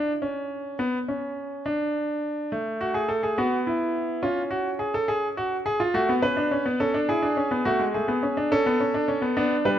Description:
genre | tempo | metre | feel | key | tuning
classical, baroque-style 4-part fugue for grand piano | 70 BPM (dotted quarters) | 12/8 | straight | unclear | A4 = 444 Hz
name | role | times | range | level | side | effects
bright concert grand piano | solo | 0.0-9.8 s | G3 to B4 | -23 LUFS | equal | none
room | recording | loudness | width
moderate concert hall reverb, RT60 2.2 s | close, detailed microphones | -23 LUFS | side -10 dB against mid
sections
0.0-9.8 A section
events
none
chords
0.0 N.C.; 2.5 F#m/A; 4.2 C#; 5.9 F#m/A (rootless); 7.7 F#m (rootless)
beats
0.79 1.65 | 2.52 3.38 4.23 5.09 | 5.95 6.80 7.65 8.51 | 9.37

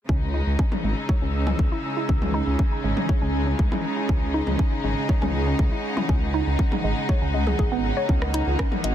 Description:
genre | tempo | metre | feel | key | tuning
melodic techno | 120 BPM | 4/4 | straight | C# dorian | A4 = 440 Hz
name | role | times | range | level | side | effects
clear studio string section | sustained chords | 0.1-8.9 s | C#3 to D#4 | -30 LUFS | left 1 dB | sidechain pumping
woody wave-folded pluck | arpeggios | 0.1-8.9 s | G#3 to C#5 | -30 LUFS | right 1 dB | chorus, vintage 12-bit sampler grit, sidechain pumping, digital delay
swelling detuned saw bass | bass | 0.1-8.9 s | G#1 to C#2 | -25 LUFS | equal | sidechain pumping
electronic kick drum | drums | 0.1-8.7 s | none | -22 LUFS | equal | none
airy breathy pad | texture | 0.8-8.9 s | C#4 to E6 | -31 LUFS | right 3 dB | chorus, sidechain pumping
punchy analog drum machine | drums | 0.7-8.9 s | hi-hat, rim click, toms | -30 LUFS | left 2 dB | sidechain pumping on toms, soft clipping on snare, sidechain pumping on hats
room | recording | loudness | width
light reverb, digital ambience | dense, heavily limited modern master | -21 LUFS | side -11 dB against mid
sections
0.1-8.9 A section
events
filter sweep on synth pluck 0.1-8.9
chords
0.1 C#m; 8.1 D#m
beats
| 0.09 0.59 1.09 1.59 | 2.09 2.59 3.09 3.59 | 4.09 4.59 5.09 5.59 | 6.09 6.59 7.09 7.59 | 8.09 8.59

